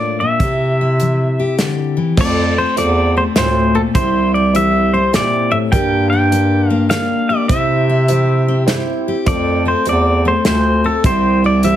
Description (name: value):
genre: honky-tonk and classic country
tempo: 102 BPM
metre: 3/4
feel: swing 66% on 8ths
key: F major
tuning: A4 = 440 Hz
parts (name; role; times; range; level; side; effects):
- pedal steel guitar; melody; 0.0-11.8 s; A4 to G5; -17 LUFS; equal; none
- picked steel-string acoustic guitar; accompaniment; 0.0-11.8 s; F2 to A4; -20 LUFS; left 4 dB; none
- mellow bass clarinet; bass; 0.4-11.8 s; C2 to C3; -16 LUFS; equal; none
- natural country drum kit; drums; 0.4-11.8 s; crash cymbal, hi-hat, kick drum, snare drum; -19 LUFS; equal; none
- warm concert grand piano; accompaniment; 2.2-11.8 s; D4 to C5; -24 LUFS; right 7 dB; none
room: moderate studio reverb, RT60 0.9 s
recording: heavily compressed radio sound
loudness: -12 LUFS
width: side -11 dB against mid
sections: 0.0-2.2 A section; 2.2-11.8 B section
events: none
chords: 0.4 C; 2.2 F; 4.0 C; 5.7 Gm; 7.5 C; 9.3 F; 11.0 C